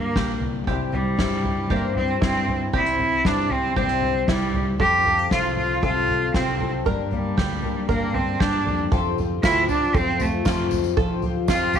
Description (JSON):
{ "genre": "indie folk with a building arrangement", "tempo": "116 BPM", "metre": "4/4", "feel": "straight", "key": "unclear", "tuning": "A4 = 440 Hz", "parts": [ { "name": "bright cello", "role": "melody", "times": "0.0-11.8 s", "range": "G3 to G4", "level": "-23 LUFS", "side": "right 2 dB", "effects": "none" }, { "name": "fingerpicked steel-string acoustic guitar", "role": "accompaniment", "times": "0.0-8.9 s", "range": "G2 to Bb4", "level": "-30 LUFS", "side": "left 11 dB", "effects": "none" }, { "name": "open-back banjo", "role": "arpeggios", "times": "0.0-11.8 s", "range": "E4 to Bb4", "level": "-31 LUFS", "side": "right 12 dB", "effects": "none" }, { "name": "fingered electric bass", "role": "bass", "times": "0.0-11.8 s", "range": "Bb1 to F3", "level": "-29 LUFS", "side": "equal", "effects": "none" }, { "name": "soft-mallet drum kit", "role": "drums", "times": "0.2-11.8 s", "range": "kick drum, snare drum, toms", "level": "-26 LUFS", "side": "equal", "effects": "none" }, { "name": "picked twelve-string acoustic guitar", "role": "accompaniment", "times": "0.7-11.8 s", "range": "G2 to A4", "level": "-29 LUFS", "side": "left 13 dB", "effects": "none" }, { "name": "tambourine", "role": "percussion", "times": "8.9-11.8 s", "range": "none", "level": "-42 LUFS", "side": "left 17 dB", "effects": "none" } ], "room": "light reverb, small room reverb", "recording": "1960s-style stereo with parts hard left and right", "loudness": "-19 LUFS", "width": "side -8 dB against mid", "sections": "0.0-8.9 A section; 8.9-11.8 B section", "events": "none", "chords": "0.0 Gm; 0.7 C; 4.8 F; 6.9 Gm; 8.9 Fadd9" }